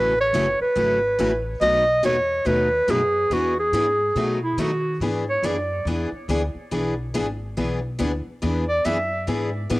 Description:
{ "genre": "acoustic string swing (jazz manouche)", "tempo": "141 BPM", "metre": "4/4", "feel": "swing 62% on 8ths", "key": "E mixolydian", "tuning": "A4 = 440 Hz", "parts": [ { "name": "warm clarinet", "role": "melody", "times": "0.0-5.9, 8.7-9.3 s", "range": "F#4 to E5", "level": "-21 LUFS", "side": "right 1 dB", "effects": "cassette tape, tape echo" }, { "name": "picked steel-string acoustic guitar", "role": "accompaniment", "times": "0.0-9.8 s", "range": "B2 to G#4", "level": "-26 LUFS", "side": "left 2 dB", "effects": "cassette tape" }, { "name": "picked steel-string acoustic guitar", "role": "accompaniment", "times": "0.0-9.8 s", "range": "B2 to B4", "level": "-31 LUFS", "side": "right 2 dB", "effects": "cassette tape" }, { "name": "upright bass", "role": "bass", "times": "0.0-9.8 s", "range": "F#1 to D#3", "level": "-29 LUFS", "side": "equal", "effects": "tube saturation" }, { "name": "breathy clarinet", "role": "second line", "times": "4.4-5.0 s", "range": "E4 to F#4", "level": "-26 LUFS", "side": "right 1 dB", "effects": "cassette tape" } ], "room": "light reverb, studio reverb", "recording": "home recording on cassette", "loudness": "-20 LUFS", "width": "side -20 dB against mid", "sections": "0.0-5.0 A section; 5.0-9.8 B section", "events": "clarinet solo 5.0-9.8", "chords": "0.0 F#m7; 1.6 B7; 3.3 E7; 4.2 B7; 5.0 E7", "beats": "0.34 0.76 1.19 | 1.61 2.04 2.46 2.89 | 3.31 3.74 4.17 4.59 | 5.02 5.44 5.87 6.29 | 6.72 7.14 7.57 8.00 | 8.42 8.85 9.27 9.70" }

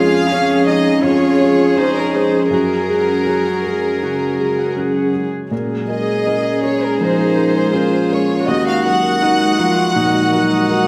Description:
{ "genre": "neoclassical piano and strings", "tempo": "81 BPM", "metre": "4/4", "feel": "rubato", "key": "Bb minor", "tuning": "A4 = 440 Hz", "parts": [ { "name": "warm chamber violin section", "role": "melody", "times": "0.0-10.9 s", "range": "Bb4 to Gb5", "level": "-22 LUFS", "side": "equal", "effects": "none" }, { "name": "clear cello", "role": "second line", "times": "0.0-10.9 s", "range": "Db4 to Gb4", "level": "-24 LUFS", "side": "equal", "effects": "none" }, { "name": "felt-muted upright piano", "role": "accompaniment", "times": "0.0-10.9 s", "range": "Eb2 to Bb4", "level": "-23 LUFS", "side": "equal", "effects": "none" }, { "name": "rich viola", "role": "accompaniment", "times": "0.0-10.9 s", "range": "Gb4 to Ab4", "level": "-24 LUFS", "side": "equal", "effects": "none" }, { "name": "glassy FM pad", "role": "sustained chords", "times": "0.0-10.9 s", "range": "F3 to Eb5", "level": "-26 LUFS", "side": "equal", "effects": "ensemble chorus, built-in reverb" }, { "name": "concert harp", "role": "arpeggios", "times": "0.0-10.9 s", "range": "Db4 to Ab5", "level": "-23 LUFS", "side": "equal", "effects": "none" } ], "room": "moderate concert hall reverb, RT60 2.2 s", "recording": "none", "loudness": "-16 LUFS", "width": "mono", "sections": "0.0-10.9 A section", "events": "none", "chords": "0.0 Db/F; 2.5 Gbadd9; 5.5 Bbm7; 8.5 Ebmadd9", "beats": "0.30 1.04 1.78 | 2.52 3.27 4.02 4.77 | 5.51 6.26 7.00 7.74 | 8.48 9.22 9.96 10.70" }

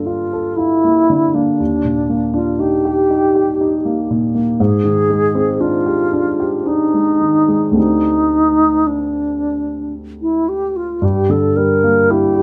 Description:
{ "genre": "classical, impressionist duo for alto flute and grand piano", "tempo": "53-61 BPM", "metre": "3/4", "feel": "rubato", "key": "unclear", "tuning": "A4 = 439 Hz", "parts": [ { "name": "wooden-headed alto flute", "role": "melody", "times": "0.0-12.4 s", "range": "D4 to Bb4", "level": "-18 LUFS", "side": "equal", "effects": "none" }, { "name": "warm grand piano", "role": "accompaniment", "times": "0.0-12.4 s", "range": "D2 to A4", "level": "-20 LUFS", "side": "equal", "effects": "none" } ], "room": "light reverb", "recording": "close, detailed microphones", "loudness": "-16 LUFS", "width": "mono", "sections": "0.0-12.4 A section", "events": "none", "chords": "0.0 Gm9; 1.6 Ebmaj7; 4.6 Abmaj7#11; 7.8 D7sus4; 11.0 Gm6", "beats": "0.58 | 1.60 2.60 3.60 | 4.59 5.60 6.66 | 7.76 8.86 9.94 | 11.03 12.10" }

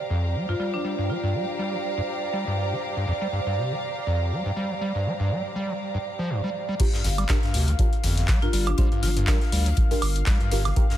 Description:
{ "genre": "acid house", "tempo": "121 BPM", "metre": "4/4", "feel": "swing 56% on 16ths", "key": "G minor pentatonic", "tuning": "A4 = 440 Hz", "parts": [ { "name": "warm analog pad", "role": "sustained chords", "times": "0.0-11.0 s", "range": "D5 to F5", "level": "-32 LUFS", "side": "right 4 dB", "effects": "chorus, sidechain pumping" }, { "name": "rich studio string section", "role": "texture", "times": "0.0-6.8 s", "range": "G4 to Bb5", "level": "-32 LUFS", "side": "left 2 dB", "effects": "sidechain pumping" }, { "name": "overdriven acid bass", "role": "riff", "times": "0.1-11.0 s", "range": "F2 to G3", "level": "-28 LUFS", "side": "equal", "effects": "tube saturation" }, { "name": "marimba with hard mallets", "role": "melody", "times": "0.5-1.8, 8.4-9.7 s", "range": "D4 to F4", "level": "-33 LUFS", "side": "left 3 dB", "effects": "tape echo" }, { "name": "deep mellow chord stab", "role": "stabs", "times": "6.8-10.8 s", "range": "D4 to C5", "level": "-33 LUFS", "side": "right 3 dB", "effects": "chorus, phaser, dub echo" }, { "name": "electronic kick drum", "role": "drums", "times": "6.8-10.9 s", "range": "none", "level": "-22 LUFS", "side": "equal", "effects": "none" }, { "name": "modern studio drum kit", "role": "drums", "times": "6.8-11.0 s", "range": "hi-hat, snare drum", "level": "-40 LUFS", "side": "left 4 dB", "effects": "none" }, { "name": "punchy analog drum machine", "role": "drums", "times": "6.8-11.0 s", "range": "crash cymbal, handclaps, hi-hat, woodblock", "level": "-30 LUFS", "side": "equal", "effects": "low-pass filter on hats, low-pass filter on snare, low-pass filter on perc, low-pass filter on toms, low-pass filter on cymbals, low-pass filter on room" }, { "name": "saturated sub bass", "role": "bass", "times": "7.0-10.7 s", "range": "G1 to D2", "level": "-24 LUFS", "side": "equal", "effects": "sidechain pumping" } ], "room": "light reverb, small room ambience", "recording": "dense, heavily limited modern master", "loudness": "-22 LUFS", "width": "side -12 dB against mid", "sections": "0.0-6.8 A section; 6.8-11.0 B section", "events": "drop 6.8-11.0", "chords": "0.0 Gm7", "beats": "0.35 | 0.85 1.34 1.84 2.33 | 2.83 3.33 3.82 4.32 | 4.81 5.31 5.80 6.30 | 6.80 7.29 7.79 8.28 | 8.78 9.28 9.77 10.27 | 10.76" }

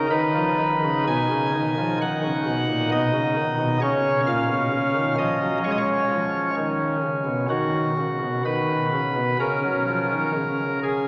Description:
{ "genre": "classical, chorale-style piece for pipe organ", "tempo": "65 BPM", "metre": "4/4", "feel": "straight", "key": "unclear", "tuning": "A4 = 440 Hz", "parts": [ { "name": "pipe organ, cornet", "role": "solo", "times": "0.0-11.1 s", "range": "A#2 to G#5", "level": "-23 LUFS", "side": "equal", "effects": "none" } ], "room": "wet cathedral reverb, RT60 4.5 s", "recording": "none", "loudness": "-23 LUFS", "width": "mono", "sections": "0.0-11.1 A section", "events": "none", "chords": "0.1 B; 9.4 F#/C#; 10.3 N.C.", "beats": "| 0.11 1.07 2.00 2.91 | 3.82 4.73 5.65 6.57 | 7.50 8.46 9.40 10.35" }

